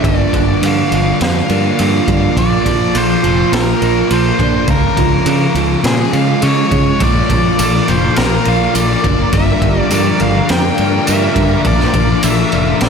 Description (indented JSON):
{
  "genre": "rock, shoegaze and dream pop",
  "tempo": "103 BPM",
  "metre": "4/4",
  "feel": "straight",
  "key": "unclear",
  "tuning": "A4 = 440 Hz",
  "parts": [
    { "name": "nasal lead guitar with a parked wah", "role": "melody", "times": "0.0-12.9 s", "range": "Ab4 to G5", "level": "-19 LUFS", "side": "left 1 dB", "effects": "overdrive, diffuse ambient delay" },
    { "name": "electric guitar through a small old amp", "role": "riff", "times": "0.0-12.9 s", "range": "G2 to D4", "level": "-19 LUFS", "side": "right 11 dB", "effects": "reverse reverb" },
    { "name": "thick fuzz guitar", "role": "riff", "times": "0.0-12.9 s", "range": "G2 to D4", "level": "-18 LUFS", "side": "left 10 dB", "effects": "distortion, wide subtle chorus" },
    { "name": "growling fingered electric bass", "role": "bass", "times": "0.0-12.9 s", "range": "F1 to Db3", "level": "-17 LUFS", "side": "equal", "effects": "overdrive" },
    { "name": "raw garage drum kit", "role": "drums", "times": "0.0-12.9 s", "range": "kick drum, ride cymbal, snare drum", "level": "-18 LUFS", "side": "equal", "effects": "none" },
    { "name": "analog string pad", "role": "sustained chords", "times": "7.0-12.9 s", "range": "G3 to Bb4", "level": "-19 LUFS", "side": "right 1 dB", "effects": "ensemble chorus" },
    { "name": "tambourine", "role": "percussion", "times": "7.6-12.4 s", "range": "none", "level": "-26 LUFS", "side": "right 14 dB", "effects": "none" }
  ],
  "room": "moderate lush hall reverb, RT60 2.2 s",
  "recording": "dreamy mix soaked in reverb",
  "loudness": "-11 LUFS",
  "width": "side -6 dB against mid",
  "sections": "0.0-12.9 A section",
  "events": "none",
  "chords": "0.0 Gm7; 2.4 Bb; 4.7 Db; 7.0 Bb; 9.3 Gm7; 11.7 Bb"
}